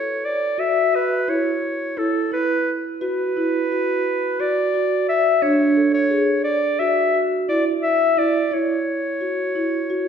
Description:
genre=contemporary instrumental, contemporary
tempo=174 BPM (eighths)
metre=9/8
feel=straight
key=unclear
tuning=A4 = 440 Hz
part: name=warm clarinet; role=melody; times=0.0-10.1 s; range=A4 to E5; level=-20 LUFS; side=left 2 dB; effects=none
part: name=marimba with soft mallets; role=arpeggios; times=0.0-10.1 s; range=D4 to A4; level=-22 LUFS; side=right 2 dB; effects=none
room=wet recital hall reverb, RT60 1.6 s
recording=recorded in a church or concert hall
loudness=-18 LUFS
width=side -7 dB against mid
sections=0.0-10.1 A section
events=none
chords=0.0 A6; 2.3 Esus2; 5.4 Dmaj9#11; 8.5 A (rootless)

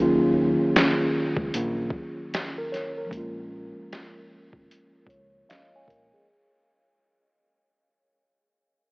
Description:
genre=lo-fi hip hop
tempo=76 BPM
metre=4/4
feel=swing 64% on 16ths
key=unclear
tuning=A4 = 436 Hz
part: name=mellow tine electric piano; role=accompaniment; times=0.0-6.5 s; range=Eb3 to Ab5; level=-25 LUFS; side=equal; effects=medium stereo tremolo, cassette tape, low-pass filter
part: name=fingered electric bass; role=bass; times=0.0-6.1 s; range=Ab1 to Eb2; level=-32 LUFS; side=equal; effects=none
part: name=lo-fi sampler-style drum kit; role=drums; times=0.8-6.1 s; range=hi-hat, kick drum, snare drum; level=-27 LUFS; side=equal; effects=none
room=moderate huge ambient reverb, RT60 8.7 s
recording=AM radio sound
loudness=-23 LUFS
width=side -32 dB against mid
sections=0.0-6.3 A section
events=fade-out 0.0-6.3; filter sweep on tine electric piano 0.0-6.3; tine electric piano fill 4.7-6.3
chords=0.0 Ebm7; 3.1 Bbm7

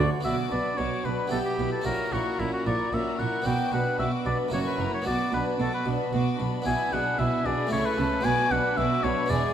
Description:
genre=classical, baroque-style concerto movement with solo episodes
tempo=113 BPM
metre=3/4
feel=straight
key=B minor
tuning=A4 = 440 Hz
part: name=warm oboe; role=melody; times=0.0-9.5 s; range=E4 to G#5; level=-28 LUFS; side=left 2 dB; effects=none
part: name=dark chamber viola section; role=accompaniment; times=0.0-9.5 s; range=G#3 to E4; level=-33 LUFS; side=right 1 dB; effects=none
part: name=harpsichord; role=accompaniment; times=0.0-9.5 s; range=E2 to B4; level=-31 LUFS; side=equal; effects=none
part: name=rich chamber double bass section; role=bass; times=0.0-9.4 s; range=E1 to C#2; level=-32 LUFS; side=right 3 dB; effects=none
part: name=warm chamber cello section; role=bass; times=0.0-9.4 s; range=E2 to C#3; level=-33 LUFS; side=right 3 dB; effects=none
part: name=rich chamber violin section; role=second line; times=0.2-9.5 s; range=E4 to B4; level=-34 LUFS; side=left 2 dB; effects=none
part: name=warm chamber violin section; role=melody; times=0.3-9.5 s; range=G5 to D6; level=-41 LUFS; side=left 6 dB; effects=none
room=wet scoring stage reverb, RT60 1.9 s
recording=none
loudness=-24 LUFS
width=side -9 dB against mid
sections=0.3-9.5 A section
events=none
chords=0.3 Bm; 1.3 Em/B; 1.9 F#7/A#; 3.5 Bm; 4.5 F#7; 5.1 Bm; 6.7 E7/B; 7.7 A/C#; 8.2 Bm

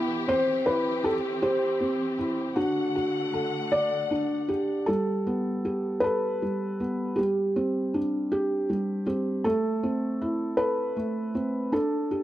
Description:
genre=children's music, lullaby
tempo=53 BPM (dotted quarters)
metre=6/8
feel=straight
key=G major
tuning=A4 = 442 Hz
part: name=felt-muted upright piano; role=melody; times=0.0-12.2 s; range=G3 to D5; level=-25 LUFS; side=equal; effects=none
part: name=dark studio string section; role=sustained chords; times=0.0-4.9 s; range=B2 to F#5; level=-34 LUFS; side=left 4 dB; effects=none
room=light reverb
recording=close, detailed microphones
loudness=-24 LUFS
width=side -14 dB against mid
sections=0.0-4.9 A section; 4.9-12.2 B section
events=none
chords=0.3 C; 2.6 D; 4.9 Gadd9; 7.2 Csus2/G; 9.5 Am; 11.7 Dsus4

